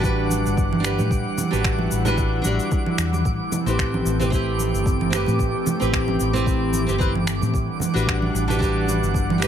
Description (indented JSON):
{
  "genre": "sunset chillout",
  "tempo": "112 BPM",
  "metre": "4/4",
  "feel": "swing 55% on 16ths",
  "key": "A dorian",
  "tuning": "A4 = 439 Hz",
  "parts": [
    { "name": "nylon-string guitar", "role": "accompaniment", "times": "0.0-9.5 s", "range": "C4 to D5", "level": "-26 LUFS", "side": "moving between left 4 dB and right 6 dB", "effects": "auto-pan, tape echo" },
    { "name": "airy breathy pad", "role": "sustained chords", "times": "0.0-9.5 s", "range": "E3 to F#5", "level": "-26 LUFS", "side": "left 1 dB", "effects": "chorus" },
    { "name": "hollow-body short-scale fingered electric bass", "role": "bass", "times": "0.0-9.5 s", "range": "G1 to A2", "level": "-24 LUFS", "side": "left 1 dB", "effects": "none" },
    { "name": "electronic cabasa, congas and finger snaps", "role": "drums", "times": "0.0-9.5 s", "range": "none", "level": "-26 LUFS", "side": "right 3 dB", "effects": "overdrive" },
    { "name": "electronic kick drum", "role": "drums", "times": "0.0-9.3 s", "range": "none", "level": "-24 LUFS", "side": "equal", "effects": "overdrive" },
    { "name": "twinkling granular texture", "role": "texture", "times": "0.0-9.5 s", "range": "D6", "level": "-32 LUFS", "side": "right 1 dB", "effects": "built-in reverb" },
    { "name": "congas", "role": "percussion", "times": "0.3-9.0 s", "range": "none", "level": "-31 LUFS", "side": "right 3 dB", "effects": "none" }
  ],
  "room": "light reverb",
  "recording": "none",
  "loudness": "-19 LUFS",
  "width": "side -9 dB against mid",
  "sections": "0.0-9.5 A section",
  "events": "none",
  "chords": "0.0 Em9; 3.3 Am7; 7.5 Em9",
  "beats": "0.04 0.58 | 1.11 1.65 2.19 2.72 | 3.26 3.79 4.33 4.86 | 5.40 5.93 6.47 7.01 | 7.54 8.08 8.61 9.15"
}